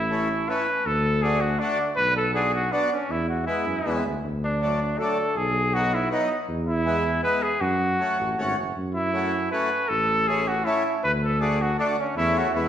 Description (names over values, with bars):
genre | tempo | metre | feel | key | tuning
alpine folk, alpine dance band | 159 BPM | 3/4 | straight | A major | A4 = 440 Hz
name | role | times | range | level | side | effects
clear trumpet | melody | 0.0-12.7 s | C#4 to B4 | -24 LUFS | equal | none
mellow tuba | bass | 0.0-12.7 s | F#1 to F#2 | -28 LUFS | equal | none
accordion | accompaniment | 0.1-12.7 s | F#3 to F#4 | -28 LUFS | equal | none
room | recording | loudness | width
wet recital hall reverb, RT60 1.5 s | recorded in a church or concert hall | -22 LUFS | side -10 dB against mid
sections
0.0-12.7 A section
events
none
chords
0.0 A; 0.9 D; 2.0 Bm; 3.1 Eadd9; 4.2 D; 5.4 B; 6.5 E; 7.6 F#m; 9.9 A; 11.0 D; 12.2 A/E